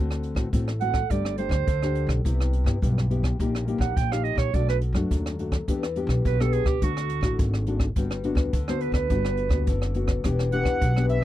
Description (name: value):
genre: samba and choro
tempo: 105 BPM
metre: 4/4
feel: straight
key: G major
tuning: A4 = 440 Hz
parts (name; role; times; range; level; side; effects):
- nylon-string guitar; accompaniment; 0.0-11.2 s; F#2 to G4; -28 LUFS; left 4 dB; none
- upright bass; bass; 0.0-11.2 s; E1 to G2; -26 LUFS; equal; none
- jazz brush drum kit; drums; 0.1-11.2 s; hi-hat, kick drum, rim click; -27 LUFS; equal; none
- clear clarinet; second line; 0.8-9.8 s; F#4 to G5; -28 LUFS; right 16 dB; none
- accordion; melody; 10.5-11.2 s; E5 to F#5; -28 LUFS; right 3 dB; light tremolo tuning
room: little or no reverb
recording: dry, close 1970s-style studio recording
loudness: -22 LUFS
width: side -13 dB against mid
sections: 0.0-10.2 A section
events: clarinet solo 0.0-10.2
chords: 0.0 D7; 1.1 Gsus2; 2.2 Cmaj7; 3.4 Eb/Bb; 4.5 Bm7; 5.7 Em7; 6.8 D; 8.0 Gmaj7; 10.2 Em7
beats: 0.53 | 1.10 1.68 2.25 2.82 | 3.39 3.97 4.54 5.11 | 5.68 6.25 6.82 7.39 | 7.96 8.54 9.11 9.68 | 10.25 10.82